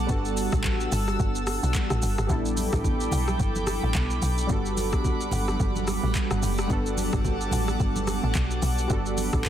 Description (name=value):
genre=amapiano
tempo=109 BPM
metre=4/4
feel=swing 58% on 16ths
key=unclear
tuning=A4 = 440 Hz
part: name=warm analog keys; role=accompaniment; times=0.0-9.5 s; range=G3 to A4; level=-30 LUFS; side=equal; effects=chorus
part: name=airy breathy pad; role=sustained chords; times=0.0-9.5 s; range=G3 to E6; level=-31 LUFS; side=right 2 dB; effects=chorus, sidechain pumping
part: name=woody log drum bass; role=bass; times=0.0-9.5 s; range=F#1 to B1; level=-27 LUFS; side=equal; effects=none
part: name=smooth R&B drum kit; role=drums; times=0.1-9.5 s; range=handclaps, hi-hat, kick drum, rim click, shaker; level=-28 LUFS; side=equal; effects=overdrive
part: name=congas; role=percussion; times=2.3-9.5 s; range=none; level=-36 LUFS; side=right 1 dB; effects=none
room=little or no reverb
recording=dense, heavily limited modern master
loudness=-23 LUFS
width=side -10 dB against mid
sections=0.0-9.5 A section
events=none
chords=0.0 Em11/G; 2.3 A9sus4; 4.5 Gmaj7; 6.7 Gmaj9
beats=| 0.09 0.64 1.20 1.75 | 2.30 2.85 3.40 3.95 | 4.50 5.05 5.60 6.15 | 6.70 7.25 7.80 8.35 | 8.90 9.45